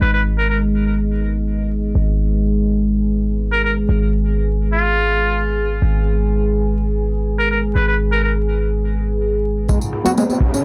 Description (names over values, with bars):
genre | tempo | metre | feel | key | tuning
breakbeat, breaks | 124 BPM | 4/4 | straight | unclear | A4 = 440 Hz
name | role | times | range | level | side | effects
trumpet with metal mute | melody | 0.0-0.6, 3.5-8.3 s | F4 to Cb5 | -23 LUFS | equal | telephone sound, low-pass filter, digital delay
deep dark ambient pad | sustained chords | 0.0-10.6 s | Ab3 to Ab5 | -24 LUFS | equal | chorus, built-in reverb, vintage 12-bit sampler grit, sidechain pumping
warm 808-style bass | bass | 0.0-9.7 s | Ab1 | -21 LUFS | equal | tube saturation
barky reed electric piano | riff | 9.7-10.6 s | Ab3 to Gb4 | -23 LUFS | equal | overdrive, low-pass filter, digital delay
crunchy breakbeat drum kit | drums | 9.7-10.5 s | kick drum, ride cymbal, snare drum | -19 LUFS | equal | low-pass filter on kick, low-pass filter on cymbals, low-pass filter on snare, low-pass filter on room
tambourine | drums | 9.7-10.6 s | none | -33 LUFS | equal | none
congas | percussion | 9.7-10.4 s | none | -27 LUFS | equal | none
riser | sound effects | 9.9-10.6 s | none | -30 LUFS | equal | none
room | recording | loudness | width
moderate small room reverb, RT60 0.6 s | vinyl crackle | -18 LUFS | mono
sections
0.0-9.7 A section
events
riser 9.9-10.6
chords
0.0 Abm